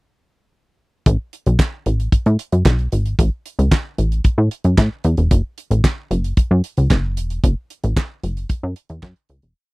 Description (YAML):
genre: early-eighties boogie funk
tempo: 113 BPM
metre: 4/4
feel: straight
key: F# minor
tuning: A4 = 440 Hz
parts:
  - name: plucky analog bass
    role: bass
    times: 1.1-9.5 s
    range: E1 to A2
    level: -16 LUFS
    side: equal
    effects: none
  - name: damped 70s drum kit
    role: drums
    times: 1.1-9.5 s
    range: handclaps, hi-hat, kick drum, snare drum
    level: -16 LUFS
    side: equal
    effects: none
  - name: group handclap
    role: percussion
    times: 1.6-9.2 s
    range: none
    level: -29 LUFS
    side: right 8 dB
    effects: none
room: little or no reverb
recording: dry, close 1970s-style studio recording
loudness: -16 LUFS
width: side -26 dB against mid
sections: 1.1-9.6 breakdown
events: fade-out 7.4-9.6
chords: none